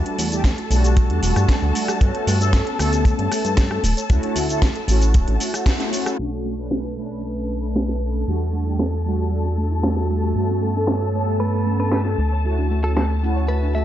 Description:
nu-disco, nu disco; 115 BPM; 4/4; straight; B minor; A4 = 437 Hz
mellow synth brass; accompaniment; 0.0-13.8 s; G3 to B4; -25 LUFS; equal; chorus, phaser, sidechain pumping, tape echo
muted studio string section; sustained chords; 0.0-13.8 s; A4 to A5; -30 LUFS; left 3 dB; sidechain pumping
chorused synth bass; bass; 0.0-13.8 s; D1 to G2; -21 LUFS; equal; sidechain pumping
soft round pluck; arpeggios; 0.1-13.8 s; A3 to C#5; -31 LUFS; right 4 dB; chorus, sidechain pumping, tape echo
house drum kit; drums; 0.1-13.8 s; hi-hat, rim click, shaker, snare drum; -26 LUFS; equal; low-pass filter on hats, studio reverb, low-pass filter on snare, low-pass filter on perc
kick drum; drums; 0.4-5.8 s; -17 LUFS; equal; studio reverb
direct-recorded clean electric guitar; melody; 11.4-13.8 s; A4 to E5; -29 LUFS; right 1 dB; tape echo
light reverb; low-pass filter, nothing above 7.9 kHz; -18 LUFS; side -12 dB against mid
0.0-6.2 A section; 6.2-13.8 B section
band accent 5.7; filter sweep on synth arpeggio sound 6.2-13.8; filter sweep 6.2-13.8
0.0 Em11; 2.0 Gmaj9#11; 3.8 Dmaj7; 6.2 Bm9; 8.3 Em11; 10.4 Gmaj9#11; 12.2 Dmaj7

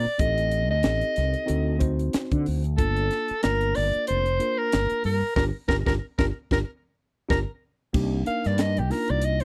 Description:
electric jazz fusion; 93 BPM; 4/4; swing 56% on 16ths; G minor; A4 = 440 Hz
warm soprano saxophone; melody; 0.0-9.4 s; G4 to F5; -28 LUFS; equal; slapback echo
mellow tine electric piano; accompaniment; 0.0-9.4 s; Bb3 to C5; -34 LUFS; equal
fretless electric bass; bass; 0.0-9.4 s; F1 to D3; -28 LUFS; equal; analog chorus
crisp fusion drum kit; drums; 0.2-9.4 s; crash cymbal, hi-hat, kick drum, snare drum; -29 LUFS; equal
little or no reverb; dry, close 1970s-style studio recording; -25 LUFS; mono
0.0-7.9 A section; 7.9-9.4 B section
band accent 5.4-7.9; tine electric piano fill 6.0-7.9; drum fill 7.6-7.9; soprano saxophone solo 7.9-9.4
0.2 Am7b5; 1.5 D7b9; 2.8 Gm7; 7.9 Cm7

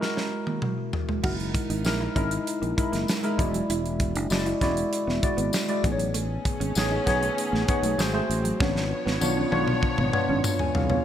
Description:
polished 1980s jazz-funk pop; 98 BPM; 4/4; straight; A4 = 441 Hz
tine electric piano; accompaniment; 0.0-11.0 s; G#3 to G#5; -27 LUFS; left 1 dB; lush chorus
modern studio drum kit; drums; 0.0-11.0 s; crash cymbal, hi-hat, kick drum, snare drum, toms; -28 LUFS; equal
mellow electric guitar; riff; 0.2-11.0 s; F#3 to F#4; -34 LUFS; right 4 dB; analog chorus
sustaining fretless electric bass; bass; 1.2-11.0 s; E1 to C2; -29 LUFS; equal
tambourine; percussion; 1.8-10.6 s; -36 LUFS; left 6 dB
warm studio string section; sustained chords; 6.1-11.0 s; E#3 to C#5; -32 LUFS; left 1 dB
moderate plate reverb, RT60 2.9 s; bright 1980s-style digital production; -23 LUFS; side -10 dB against mid
0.0-1.2 A section; 1.2-11.0 B section
break 0.0-1.2; drum fill 0.0-1.2, 8.6-11.0
0.0 F#9; 1.2 F#13; 3.4 E9; 5.8 Amaj9#11; 8.0 G#7b9; 8.6 C#7b9/G#

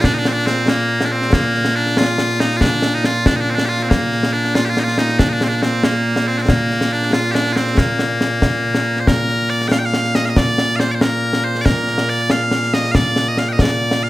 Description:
scottish traditional, Scottish pipe music; 93 BPM (dotted quarters); 6/8; straight; Bb major; A4 = 440 Hz
loud bright bagpipes; melody; 0.0-14.1 s; Bb2 to G5; -16 LUFS; equal; slapback echo
concert snare drum and concert bass drum; drums; 0.0-14.0 s; -18 LUFS; left 1 dB
moderate recital hall reverb, RT60 1.4 s; -14 LUFS; side -16 dB against mid
0.0-9.1 A section; 9.1-14.1 A section

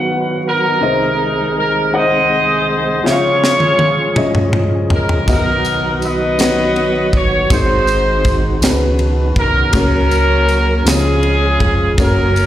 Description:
slow gospel; 54 BPM (dotted quarters); 6/8; straight; A4 = 442 Hz
dark upright piano; accompaniment; 0.0-12.5 s; G#2 to F#5; -19 LUFS; left 3 dB; plate reverb, slapback echo
tonewheel organ; sustained chords; 0.0-12.5 s; B#1 to A#4; -21 LUFS; right 3 dB; slow rotary speaker, chorus vibrato, plate reverb
clear horn section; melody; 0.5-12.5 s; C#4 to D#5; -15 LUFS; equal; plate reverb, slapback echo
tight funk drum kit; drums; 3.1-12.5 s; kick drum, ride cymbal, snare drum, toms; -18 LUFS; equal
hollow-body short-scale fingered electric bass; bass; 5.3-12.5 s; E#1 to C#2; -18 LUFS; equal
tambourine; percussion; 5.3-12.5 s; -28 LUFS; right 5 dB
light reverb; live gig heard through the venue's PA, recital hall reverb; -12 LUFS; side -12 dB against mid
0.0-12.5 A section
drum fill 3.0-5.3
0.0 B; 0.8 G#/B#; 3.0 C#; 5.3 B; 7.5 G#7; 8.6 C#9sus4; 9.7 F#/C#; 10.9 C#

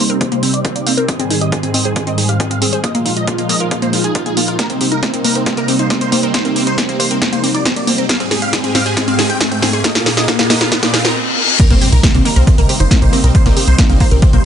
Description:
uplifting trance; 137 BPM; 4/4; straight; C minor; A4 = 441 Hz
big supersaw lead; melody; 0.0-14.4 s; C4 to G5; -20 LUFS; right 1 dB; phaser, sidechain pumping, low-pass filter, digital delay
lush unison pad; sustained chords; 0.0-14.4 s; Ab2 to Ab4; -20 LUFS; right 1 dB; chorus, phaser, sidechain pumping
wide unison pluck; arpeggios; 0.0-14.4 s; Bb3 to C5; -20 LUFS; left 2 dB; phaser, sidechain pumping, digital delay
punchy analog drum machine; drums; 0.1-14.4 s; crash cymbal, hi-hat, snare drum; -17 LUFS; right 1 dB
electronic kick drum; drums; 0.2-14.3 s; -15 LUFS; equal; overdrive, high-pass filter on kick, high-pass filter on room
riser, reverse cymbal and impact; sound effects; 6.4-13.3 s; -21 LUFS; left 1 dB
tight sequencer bass; bass; 11.7-14.4 s; G1 to C2; -11 LUFS; equal; sidechain pumping
digital ambience; nothing above 10.7 kHz; -11 LUFS; side -8 dB against mid
0.0-11.6 A section; 11.6-14.4 B section
build-up 0.0-11.6; filter sweep on supersaw synth 0.0-11.6; drum fill 4.6-11.2; riser 6.4-11.2; reverse cymbal 10.7-11.6; drop 11.6-14.4; impact 11.6-13.3
0.0 Cm7; 1.1 Abmaj7; 2.8 Bb7sus4; 4.6 Cm7; 8.1 Abmaj7; 9.8 Bb7sus4; 11.6 Cm7

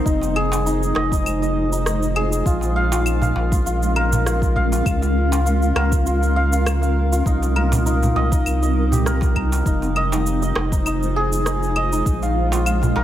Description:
organic downtempo; 100 BPM; 4/4; swing 54% on 16ths; F minor; A4 = 440 Hz
granular cloud pad; sustained chords; 0.0-13.0 s; G3 to C5; -25 LUFS; equal; built-in reverb, sidechain pumping
santur; arpeggios; 0.0-13.0 s; Eb4 to Bb5; -23 LUFS; equal; tape echo
bronze singing bowl; texture; 0.0-13.0 s; Eb4 to Eb5; -32 LUFS; left 3 dB
warm sub bass; bass; 0.1-13.0 s; F1 to Db2; -21 LUFS; equal; sidechain pumping
electronic cabasa, claves and rim click; drums; 0.1-12.9 s; -28 LUFS; equal; studio reverb
electronic kick drum; drums; 0.1-12.2 s; -21 LUFS; equal; studio reverb
darbuka; percussion; 0.2-13.0 s; -27 LUFS; right 2 dB
light reverb, small room ambience; -17 LUFS; side -12 dB against mid
0.0-13.0 A section
0.1 Fm7; 2.5 Bbm7; 4.9 Db6; 7.3 Cm7; 9.7 Fm7; 12.1 Bbm7

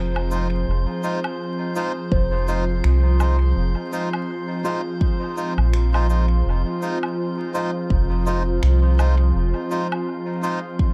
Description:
ambient dub; 83 BPM; 4/4; swing 58% on 16ths; F minor; A4 = 440 Hz
warm analog pad; sustained chords; 0.0-10.9 s; F3 to Ab4; -29 LUFS; equal; subtle chorus
round analog bass; bass; 0.0-9.5 s; F1 to C2; -20 LUFS; equal
drifting glass-harmonics texture; texture; 0.0-10.9 s; C5; -38 LUFS; equal; chorus, built-in reverb
electronic woodblock, cabasa and finger snaps; drums; 0.2-10.6 s; -37 LUFS; equal; studio reverb, dub echo
melodica; stabs; 0.3-10.6 s; Ab3 to C5; -31 LUFS; equal; dub echo
handpan; arpeggios; 2.1-8.1 s; F4 to C5; -36 LUFS; equal; dub echo
electronic kick drum; drums; 2.1-10.9 s; -22 LUFS; equal; studio reverb
light reverb; vinyl crackle; -21 LUFS; mono
0.0-10.9 A section
0.0 Fm7

